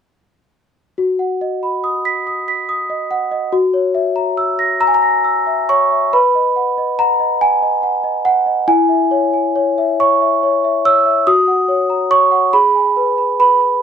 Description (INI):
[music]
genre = classical, lullaby for celesta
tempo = 47 BPM (dotted quarters)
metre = 6/8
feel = rubato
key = B major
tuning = A4 = 440 Hz
[part]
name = large celesta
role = solo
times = 1.0-13.8 s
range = E4 to B6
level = -13 LUFS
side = equal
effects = none
[sound]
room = light reverb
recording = dark, warm production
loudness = -13 LUFS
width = side -7 dB against mid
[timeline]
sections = 1.0-6.1 A section; 6.1-13.8 B section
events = none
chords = 1.0 B/F#; 3.5 F#7; 6.1 B; 8.7 C#m/E; 11.3 F#; 12.5 G#m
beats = | 0.98 2.26 | 3.52 4.80 | 6.14 7.42 | 8.69 10.00 | 11.27 12.53